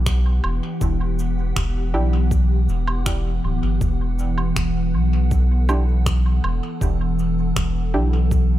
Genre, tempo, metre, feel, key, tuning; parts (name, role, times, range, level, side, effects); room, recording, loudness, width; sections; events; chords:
ambient dub; 80 BPM; 4/4; straight; E minor; A4 = 440 Hz
soft additive organ-like pad; sustained chords; 0.0-8.6 s; E3 to F#5; -25 LUFS; equal; ensemble chorus, built-in reverb
soft dub sub bass; bass; 0.0-8.6 s; D1 to B1; -19 LUFS; equal
electronic finger snaps, cabasa and woodblock; drums; 0.1-8.5 s; -30 LUFS; right 1 dB; overdrive, studio reverb, dub echo
electronic kick drum; drums; 0.1-8.5 s; -23 LUFS; equal; overdrive, studio reverb
filtered dub chord stab; stabs; 1.9-8.2 s; D4 to G4; -28 LUFS; right 2 dB; wide subtle chorus, cassette tape, dub echo
little or no reverb; -18 LUFS; side -13 dB against mid
0.0-8.6 A section
0.0 Em